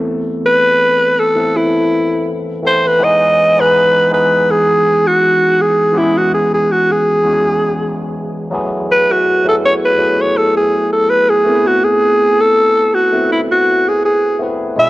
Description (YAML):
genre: soul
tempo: 82 BPM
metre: 4/4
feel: swing 54% on 16ths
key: unclear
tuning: A4 = 440 Hz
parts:
  - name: overdriven tine electric piano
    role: accompaniment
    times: 0.0-14.9 s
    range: B2 to B4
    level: -18 LUFS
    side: left 1 dB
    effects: phaser, cassette tape
  - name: raspy alto saxophone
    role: melody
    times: 0.5-14.9 s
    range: E4 to E5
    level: -11 LUFS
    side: equal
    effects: none
room: moderate lush hall reverb, RT60 2.4 s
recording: home recording on cassette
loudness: -11 LUFS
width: side -18 dB against mid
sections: 0.0-14.8 A section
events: alto saxophone solo 0.0-14.8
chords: 0.0 Amadd9; 3.0 Emaj7; 6.0 C#m7; 8.5 F#m11; 11.5 Amadd9